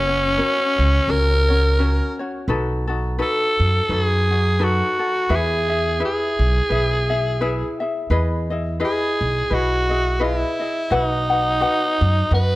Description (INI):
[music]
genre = Hawaiian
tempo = 85 BPM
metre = 4/4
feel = swing 57% on 8ths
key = E major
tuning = A4 = 440 Hz
[part]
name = raspy alto saxophone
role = melody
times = 0.0-12.6 s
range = C#4 to B4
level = -20 LUFS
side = equal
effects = none
[part]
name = ukulele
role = accompaniment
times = 0.0-12.6 s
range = C#4 to F#5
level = -24 LUFS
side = left 2 dB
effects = none
[part]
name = upright bass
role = bass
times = 0.0-12.6 s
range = F#1 to F#2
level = -20 LUFS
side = equal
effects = none
[sound]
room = light reverb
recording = close, detailed microphones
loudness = -17 LUFS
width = side -18 dB against mid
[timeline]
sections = 0.0-8.1 A section; 8.1-12.6 A section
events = none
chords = 0.0 F#; 2.5 B7; 5.3 E; 8.1 Emaj7; 10.9 B